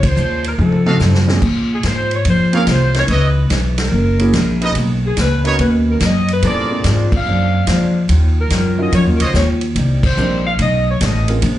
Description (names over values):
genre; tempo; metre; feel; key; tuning
jazz, big band swing; 144 BPM; 4/4; swing 67% on 8ths; Bb minor; A4 = 440 Hz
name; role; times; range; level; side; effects
dark saxophone section; melody; 0.0-11.3 s; Ab4 to F5; -21 LUFS; equal; plate reverb, slapback echo
picked old ladder-braced acoustic guitar; accompaniment; 0.0-11.6 s; Bb2 to Ab4; -26 LUFS; left 3 dB; plate reverb, slapback echo
upright bass; bass; 0.0-11.6 s; Gb1 to Bb2; -15 LUFS; equal; none
swinging big-band drum kit; drums; 0.0-11.6 s; crash cymbal, hi-hat, kick drum, ride cymbal, snare drum, toms; -21 LUFS; equal; none
warm concert grand piano; accompaniment; 0.9-11.4 s; Bb2 to Bb4; -22 LUFS; right 2 dB; plate reverb, slapback echo
clear trumpet section; stabs; 0.9-9.3 s; D#4 to F5; -22 LUFS; right 3 dB; plate reverb, slapback echo
room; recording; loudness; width
light reverb; live gig heard through the venue's PA, club reverb, nothing above 10.4 kHz; -13 LUFS; side -13 dB against mid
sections
0.0-1.4 A section; 1.4-11.6 A section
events
band accent 0.0, 3.7, 7.1, 10.0; drum fill 0.6-1.4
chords
0.0 Bbm7; 0.6 F7b9; 1.4 Bbm7; 3.1 Dbm9; 3.9 Gb9; 4.8 Bmaj9; 6.4 Bb7; 8.1 Ebm9; 9.8 Cm7; 10.6 B9